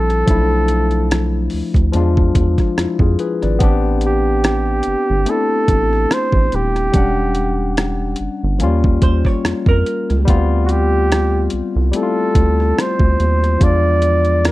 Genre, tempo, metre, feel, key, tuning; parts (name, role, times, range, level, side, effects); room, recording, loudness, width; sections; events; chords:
R&B, neo-soul; 72 BPM; 4/4; swing 56% on 16ths; A minor; A4 = 439 Hz
warm flugelhorn; melody; 0.0-14.5 s; F#4 to D5; -18 LUFS; right 2 dB
barky tine electric piano; accompaniment; 0.0-14.5 s; F3 to F#5; -20 LUFS; left 5 dB
rubbery square bass; bass; 0.0-14.5 s; D#1 to F2; -17 LUFS; equal
boom bap sampler-style drum kit; drums; 0.1-14.5 s; hi-hat, kick drum, rim click; -17 LUFS; equal
vintage hollow-body jazz guitar; second line; 9.0-10.2 s; A#4 to C#5; -23 LUFS; right 3 dB
digital ambience; dry, close 1970s-style studio recording; -13 LUFS; side -17 dB against mid
0.0-14.5 A section
0.3 Bm7b5; 1.9 E7b9; 3.6 Am7; 6.9 Em9; 8.6 D#9; 10.3 Dm11; 13.6 E7b9